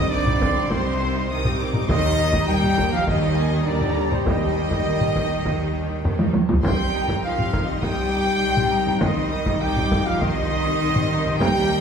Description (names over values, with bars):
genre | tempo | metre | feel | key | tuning
cinematic, epic orchestral film score | 101 BPM | 4/4 | straight | C minor | A4 = 440 Hz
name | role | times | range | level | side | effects
clear symphonic violin section | melody | 0.0-11.8 s | G5 to Eb6 | -34 LUFS | left 4 dB | none
warm symphonic violin section | second line | 0.0-11.8 s | C5 to G5 | -30 LUFS | left 3 dB | none
clear symphonic viola section | accompaniment | 0.0-11.8 s | Eb3 to G4 | -30 LUFS | right 1 dB | none
clear trombone section | sustained chords | 0.0-11.8 s | G3 to G4 | -30 LUFS | equal | none
warm French horn section | sustained chords | 0.0-11.8 s | C4 to G4 | -30 LUFS | left 2 dB | none
clear trumpet section | stabs | 0.0-11.8 s | C5 to G5 | -26 LUFS | right 1 dB | none
clear symphonic double bass section | bass | 0.0-11.8 s | C2 to Eb2 | -28 LUFS | right 2 dB | none
rich symphonic cello section | bass | 0.0-11.8 s | C3 to G3 | -27 LUFS | right 1 dB | none
taiko ensemble | drums | 0.3-11.8 s | none | -24 LUFS | equal | none
room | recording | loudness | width
wet recital hall reverb, RT60 1.5 s | heard from further back in the room | -19 LUFS | side -7 dB against mid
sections
0.0-11.8 A section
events
drum fill 6.0-6.6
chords
0.0 Cm; 1.9 Eb; 6.6 Cm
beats
0.11 0.70 1.29 | 1.89 2.48 3.08 3.67 | 4.27 4.86 5.45 6.05 | 6.64 7.24 7.83 8.42 | 9.02 9.61 10.21 10.80 | 11.39